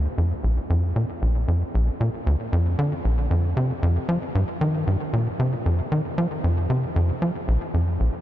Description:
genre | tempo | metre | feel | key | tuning
ambient | 115 BPM | 4/4 | straight | unclear | A4 = 440 Hz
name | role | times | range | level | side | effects
tight sequencer bass | solo | 0.0-8.1 s | Bb1 to F3 | -21 LUFS | equal | tape echo
room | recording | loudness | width
moderate huge ambient reverb, RT60 7.3 s | dark, warm production | -21 LUFS | side -13 dB against mid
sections
0.0-8.2 A section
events
none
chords
none

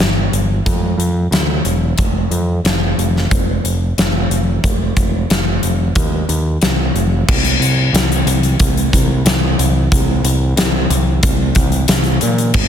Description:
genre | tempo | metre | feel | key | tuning
rock, shoegaze and dream pop | 91 BPM | 4/4 | straight | unclear | A4 = 441 Hz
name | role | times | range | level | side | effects
growling picked electric bass | bass | 0.0-12.7 s | E1 to Bb2 | -16 LUFS | equal | overdrive
huge arena drum kit | drums | 0.0-12.7 s | crash cymbal, hi-hat, kick drum, snare drum | -15 LUFS | left 1 dB | none
room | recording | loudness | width
little or no reverb | dense, heavily limited modern master | -13 LUFS | side -9 dB against mid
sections
0.0-7.3 A section; 7.3-12.7 B section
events
none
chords
none

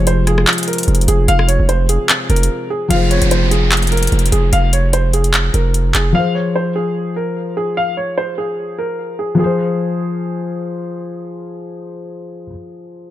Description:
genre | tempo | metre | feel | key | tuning
hip hop, trap | 148 BPM | 4/4 | half-time | F minor | A4 = 440 Hz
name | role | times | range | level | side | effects
dark baby grand piano | melody | 0.0-10.6 s | Ab4 to F5 | -20 LUFS | right 1 dB | low-pass filter, tape echo
felt-muted upright piano | accompaniment | 0.0-13.1 s | F3 to C5 | -21 LUFS | left 3 dB | low-pass filter
dark brass ensemble | sustained chords | 0.0-2.9 s | C3 to F4 | -27 LUFS | equal | none
distorted 808-style bass | bass | 0.0-6.1 s | F1 | -14 LUFS | equal | distortion
booming analog drum machine | drums | 0.1-6.0 s | handclaps, hi-hat, rim click | -17 LUFS | equal | none
downlifter | sound effects | 2.9-6.1 s | none | -24 LUFS | right 1 dB | none
room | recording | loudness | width
small room ambience | none | -14 LUFS | side -13 dB against mid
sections
0.0-2.9 A section; 2.9-9.4 B section; 9.4-12.6 C section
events
break 2.5-2.9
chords
0.0 Fm

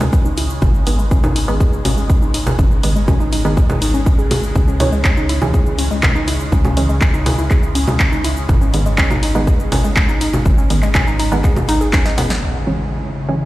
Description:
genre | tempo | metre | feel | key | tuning
melodic techno | 122 BPM | 4/4 | straight | C# minor | A4 = 438 Hz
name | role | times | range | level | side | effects
woody wave-folded pluck | arpeggios | 0.0-12.2 s | G#3 to D#5 | -22 LUFS | equal | chorus, sidechain pumping, dub echo
tight sequencer bass | bass | 0.0-12.4 s | G#1 to C#2 | -19 LUFS | equal | sidechain pumping
swarming drone | drone | 0.0-13.5 s | C#3 to G#3 | -28 LUFS | left 1 dB | built-in reverb, phaser, sidechain pumping
house drum kit | drums | 0.0-12.4 s | congas, handclaps, hi-hat, shaker, snare drum | -20 LUFS | equal | low-pass filter on perc, studio reverb, low-pass filter on hats, low-pass filter on snare
electronic kick drum | drums | 0.1-12.0 s | none | -15 LUFS | equal | studio reverb
filtered dub chord stab | stabs | 0.9-13.4 s | D#3 to C#4 | -25 LUFS | right 2 dB | lush chorus, sidechain pumping, dub echo
warm analog pad | sustained chords | 12.4-13.5 s | C#3 to E4 | -24 LUFS | left 1 dB | chorus, sidechain pumping
impact | sound effects | 12.4-13.5 s | none | -23 LUFS | equal | none
room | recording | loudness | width
little or no reverb | played on a big sound system in a bare room, stone room reverb | -13 LUFS | side -17 dB against mid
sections
0.0-12.4 A section; 12.4-13.5 B section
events
filter sweep on synth pluck 0.0-12.4; drum fill 11.9-12.4; impact 12.4-13.5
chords
0.0 C#m; 0.6 G#5; 4.6 C#m; 8.5 G#m; 12.4 C#m

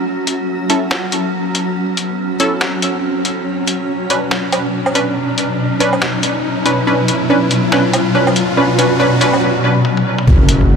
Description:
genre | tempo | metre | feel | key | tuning
deep dubstep | 141 BPM | 4/4 | swing 58% on 16ths, half-time | unclear | A4 = 440 Hz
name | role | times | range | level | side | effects
granular cloud pad | sustained chords | 0.0-10.8 s | B2 to F#4 | -17 LUFS | equal | built-in reverb
riser and impact | sound effects | 0.0-10.8 s | none | -21 LUFS | equal | none
trip hop sampler-style drum kit | drums | 0.3-10.6 s | hi-hat, snare drum, toms, woodblock | -20 LUFS | equal | high-pass filter on hats, high-pass filter on snare, high-pass filter on perc, high-pass filter on toms
filtered dub chord stab | stabs | 0.7-9.3 s | C#4 to B4 | -18 LUFS | equal | chorus, dub echo
dark detuned saw bass | bass | 10.3-10.8 s | F#1 | -14 LUFS | equal | none
electronic kick drum | drums | 10.3-10.7 s | none | -12 LUFS | equal | none
wind-like tuned noise texture | texture | 10.5-10.8 s | F#5 | -35 LUFS | right 2 dB | built-in reverb
room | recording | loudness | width
moderate huge ambient reverb, RT60 7.9 s | none | -13 LUFS | side -6 dB against mid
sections
0.0-10.3 A section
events
build-up 0.0-10.3; riser 0.0-9.4; break 9.4-10.3; drum fill 9.8-10.3; impact 10.3-10.8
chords
0.0 F#5; 3.5 Bmadd9

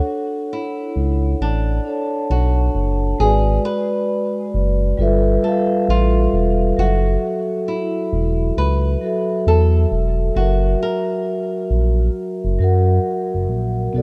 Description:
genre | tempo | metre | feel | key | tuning
lo-fi hip hop | 67 BPM | 4/4 | swing 65% on 16ths | unclear | A4 = 441 Hz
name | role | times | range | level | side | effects
flamenco guitar | melody | 0.0-13.5 s | D4 to B4 | -28 LUFS | equal | low-pass filter
vibraphone with soft mallets | accompaniment | 0.0-14.0 s | F#3 to A5 | -23 LUFS | equal | cassette tape, low-pass filter
smooth synth bass | bass | 1.0-14.0 s | E1 to F#2 | -19 LUFS | equal | none
room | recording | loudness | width
light reverb, small room ambience | rough home demo mix | -19 LUFS | mono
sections
0.0-14.0 A section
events
none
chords
0.0 Dmaj7; 3.2 G#m7b5; 5.0 G13; 6.8 F#m7; 10.4 F#7

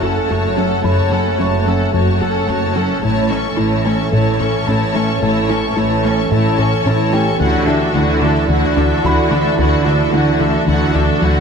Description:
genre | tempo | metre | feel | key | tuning
cinematic | 110 BPM | 4/4 | straight | unclear | A4 = 440 Hz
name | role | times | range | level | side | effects
clear studio violin section | second line | 0.0-11.4 s | F#4 to C#6 | -22 LUFS | left 4 dB | none
warm symphonic viola section | accompaniment | 0.0-11.4 s | A3 to A4 | -21 LUFS | right 1 dB | none
warbly tape-like pad | sustained chords | 0.0-11.4 s | E3 to D5 | -20 LUFS | right 2 dB | chorus, built-in reverb
tight sequenced synth | arpeggios | 0.0-11.4 s | D3 to A4 | -25 LUFS | equal | chorus, ping-pong delay
round analog bass | riff | 0.0-11.4 s | D2 to A3 | -20 LUFS | left 2 dB | none
rich symphonic double bass section | bass | 0.0-11.4 s | F#1 to D2 | -22 LUFS | right 3 dB | none
warm symphonic cello section | bass | 0.0-11.4 s | F#2 to D3 | -22 LUFS | right 1 dB | none
impact | sound effects | 0.2-0.9 s | none | barely audible | none | none
felt-muted upright piano | texture | 0.0-11.4 s | E4 to C#6 | -28 LUFS | left 1 dB | ping-pong delay
room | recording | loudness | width
moderate scoring stage reverb, RT60 1.9 s | none | -13 LUFS | side -6 dB against mid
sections
0.0-11.4 A section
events
impact 0.0-0.9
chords
0.0 F#m; 3.0 A; 7.4 Dadd9

